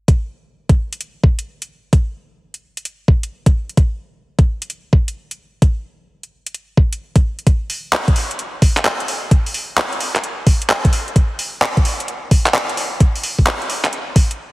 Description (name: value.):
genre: UK garage, two-step garage.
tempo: 130 BPM.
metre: 4/4.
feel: swing 65% on 16ths.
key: none.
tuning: none.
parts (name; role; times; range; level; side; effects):
electronic kick drum; drums; 0.1-14.3 s; none; -12 LUFS; equal; none.
garage drum kit; drums; 0.1-14.4 s; handclaps, hi-hat; -19 LUFS; equal; none.
room: light reverb, digital ambience.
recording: heavily compressed radio sound, multiband compression.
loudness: -15 LUFS.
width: side -20 dB against mid.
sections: 0.1-14.5 A section.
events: none.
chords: none.